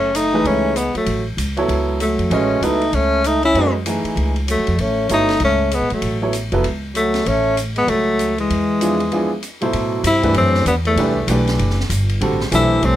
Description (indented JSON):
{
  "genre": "modal jazz",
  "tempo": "194 BPM",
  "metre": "4/4",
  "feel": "swing 62% on 8ths",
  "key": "F# dorian, A dorian from 9.7 s",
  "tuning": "A4 = 440 Hz",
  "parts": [
    { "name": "warm tenor saxophone", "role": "melody", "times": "0.0-13.0 s", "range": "G#3 to E4", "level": "-18 LUFS", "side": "left 2 dB", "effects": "none" },
    { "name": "breathy trombone", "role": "second line", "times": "0.0-13.0 s", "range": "E2 to C#4", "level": "-24 LUFS", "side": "right 4 dB", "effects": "none" },
    { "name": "upright bass", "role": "bass", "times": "0.0-13.0 s", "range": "E#1 to C#3", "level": "-21 LUFS", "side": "equal", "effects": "none" },
    { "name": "open jazz drum kit", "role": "drums", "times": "0.1-12.9 s", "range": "hi-hat, kick drum, ride cymbal, snare drum", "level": "-28 LUFS", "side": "left 1 dB", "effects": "none" },
    { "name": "warm baby grand piano", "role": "accompaniment", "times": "0.3-6.6, 8.8-13.0 s", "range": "B2 to D#5", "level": "-20 LUFS", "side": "right 2 dB", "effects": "none" }
  ],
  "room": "light reverb",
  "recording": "none",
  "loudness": "-15 LUFS",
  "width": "side -12 dB against mid",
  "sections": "0.0-9.7 A section; 9.7-13.0 B section",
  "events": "break 9.1-9.7",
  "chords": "0.0 F#m9; 8.5 E7b9; 9.7 Am9"
}